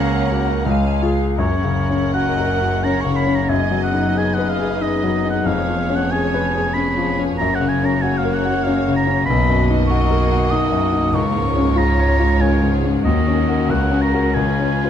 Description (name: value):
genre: classical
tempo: 76-98 BPM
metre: 3/4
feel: rubato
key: F# major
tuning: A4 = 440 Hz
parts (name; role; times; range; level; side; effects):
- clear concert grand piano; melody; 0.0-14.9 s; B1 to C#5; -18 LUFS; left 3 dB; none
- warm symphonic violin section; melody; 0.0-14.9 s; A#4 to F#5; -32 LUFS; left 4 dB; none
- bright large flute ensemble; second line; 0.0-1.4 s; E#5 to G#5; -29 LUFS; equal; none
- clear oboe; second line; 0.0-14.9 s; A#4 to D#6; -23 LUFS; right 2 dB; none
- rich symphonic violin section; second line; 0.0-14.9 s; F#4 to D#5; -31 LUFS; left 3 dB; none
- mellow bassoon; accompaniment; 0.0-1.0 s; G#3 to A#3; -30 LUFS; right 4 dB; none
- rich symphonic viola section; accompaniment; 0.0-14.9 s; G#3 to A#4; -26 LUFS; right 1 dB; none
- clear trombone section; sustained chords; 0.0-1.0 s; C#3 to C#4; -29 LUFS; right 5 dB; none
- mellow French horn section; sustained chords; 0.0-0.7 s; none; barely audible; none; none
- mellow trumpet; stabs; 0.0-1.0 s; E#5 to F#5; -34 LUFS; right 4 dB; none
- rich chamber double bass section; bass; 0.0-14.9 s; E#1 to D#2; -24 LUFS; right 3 dB; none
- rich symphonic cello section; bass; 0.0-14.9 s; E#2 to C#4; -28 LUFS; right 3 dB; none
room: light reverb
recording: close, detailed microphones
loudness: -15 LUFS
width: side -9 dB against mid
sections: 0.0-1.4 A section; 1.4-14.9 B section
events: none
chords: 0.0 F#/C#; 0.7 C#; 1.4 F#; 3.5 G#m7/F#; 5.5 C#7/E#; 7.4 F#; 9.3 Bmaj7; 11.1 C#; 13.0 D#m7; 13.7 F#/C#; 14.4 C#7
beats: 0.67 | 1.39 2.15 2.84 | 3.50 4.16 4.81 | 5.46 6.11 6.76 | 7.39 8.02 8.65 | 9.27 9.90 10.51 | 11.14 11.77 12.40 | 13.05 13.70 14.37